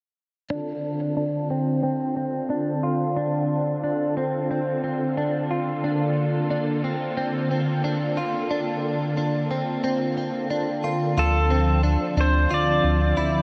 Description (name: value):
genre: dream pop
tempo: 90 BPM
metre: 4/4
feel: straight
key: D minor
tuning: A4 = 441 Hz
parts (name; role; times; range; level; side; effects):
- string machine, violas; sustained chords; 0.5-13.4 s; D3 to A4; -28 LUFS; equal; phaser, ensemble chorus, low-pass filter
- direct-recorded clean electric guitar; arpeggios; 0.5-13.4 s; C4 to F4; -28 LUFS; equal; analog chorus, low-pass filter, tape echo
- pedal steel guitar; melody; 11.2-13.4 s; A4 to D5; -26 LUFS; equal; tape echo
- chorused synth bass; bass; 11.2-13.4 s; D2; -24 LUFS; equal; none
room: wet huge ambient reverb, RT60 7.9 s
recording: dark, warm production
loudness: -24 LUFS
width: mono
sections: 0.5-11.2 A section; 11.2-13.4 B section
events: filter sweep 0.5-11.2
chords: 0.5 Dm7; 5.8 Bbmaj7; 11.2 Dm7